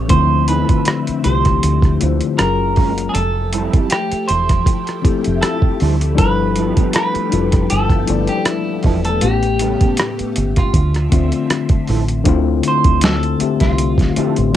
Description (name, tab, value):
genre	R&B, neo-soul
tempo	79 BPM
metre	4/4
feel	swing 55% on 16ths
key	D dorian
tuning	A4 = 440 Hz
part	clean electric guitar	melody	0.0-14.6 s	E4 to C5	-21 LUFS	right 3 dB	cassette tape
part	mellow tine electric piano	accompaniment	0.0-14.6 s	A2 to E5	-19 LUFS	left 8 dB	medium stereo tremolo
part	phased string machine	sustained chords	0.0-12.2 s	C#3 to E5	-27 LUFS	right 1 dB	ensemble chorus, phaser
part	deep dub fingered electric bass	bass	0.0-14.6 s	E1 to D2	-18 LUFS	right 1 dB	none
part	dusty soul sampler-style drum kit	drums	0.1-14.5 s	hi-hat, kick drum, rim click, snare drum	-16 LUFS	right 1 dB	cassette tape
part	mellow electric guitar	second line	0.5-14.3 s	F3 to A#4	-23 LUFS	right 9 dB	ensemble chorus
room	light reverb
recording	home recording on cassette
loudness	-13 LUFS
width	side -11 dB against mid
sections	0.0-12.3 A section; 12.3-14.6 B section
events	none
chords	0.1 Dm9; 2.4 F#maj9; 3.1 Fmaj9; 6.2 G13; 9.2 A9; 10.7 Dm9